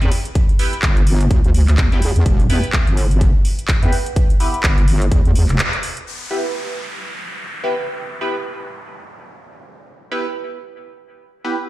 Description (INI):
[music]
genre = bass house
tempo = 126 BPM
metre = 4/4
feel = swing 58% on 16ths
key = E minor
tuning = A4 = 441 Hz
[part]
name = band-passed chord stab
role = stabs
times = 0.0-11.6 s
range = B3 to B4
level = -25 LUFS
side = right 1 dB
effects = phaser, wide subtle chorus, sidechain pumping, dub echo
[part]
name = wobble bass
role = bass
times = 0.0-5.6 s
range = E1 to E2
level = -15 LUFS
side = equal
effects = chorus, sidechain pumping
[part]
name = house drum kit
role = drums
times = 0.0-6.0 s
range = handclaps, hi-hat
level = -23 LUFS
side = equal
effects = low-pass filter on hats, low-pass filter on snare, low-pass filter on room
[part]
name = electronic kick drum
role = drums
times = 0.4-5.2 s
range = none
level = -16 LUFS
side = equal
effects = none
[part]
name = downlifter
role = sound effects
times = 6.1-9.9 s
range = none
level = -30 LUFS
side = equal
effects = none
[sound]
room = digital ambience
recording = played on a big sound system in a bare room, large studio reverb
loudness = -15 LUFS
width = side -16 dB against mid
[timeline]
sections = 0.0-6.1 A section; 6.1-11.7 B section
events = break 5.6-6.1; band accent 5.6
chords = 0.0 Em